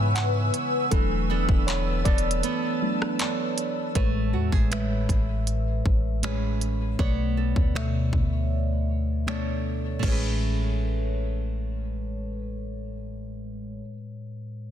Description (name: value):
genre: contemporary R&B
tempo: 79 BPM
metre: 4/4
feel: straight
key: A major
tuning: A4 = 440 Hz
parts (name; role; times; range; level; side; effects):
- mellow FM electric piano; accompaniment; 0.0-14.7 s; A2 to F#5; -30 LUFS; left 2 dB; chorus, phaser
- ethereal airy pad; sustained chords; 0.0-3.9 s; B4 to E6; -30 LUFS; left 2 dB; ensemble chorus, built-in reverb, phaser
- nylon-string guitar; arpeggios; 0.0-14.0 s; C#3 to C#5; -33 LUFS; right 9 dB; ping-pong delay
- soft 808-style bass; bass; 0.0-13.8 s; E1 to G#2; -27 LUFS; equal; none
- trap drum kit; drums; 0.2-10.2 s; crash cymbal, finger snaps, handclaps, hi-hat, kick drum, rim click; -26 LUFS; equal; soft clipping on snare
room: little or no reverb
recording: dense, heavily limited modern master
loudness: -23 LUFS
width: side -10 dB against mid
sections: 0.0-4.0 A section; 4.0-10.0 B section; 10.0-13.1 C section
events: FM electric piano solo 0.0-4.0; break 2.4-4.0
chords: 0.0 C#m7; 0.9 E7sus4; 4.0 Amaj9; 7.0 Bm9; 10.0 Amaj9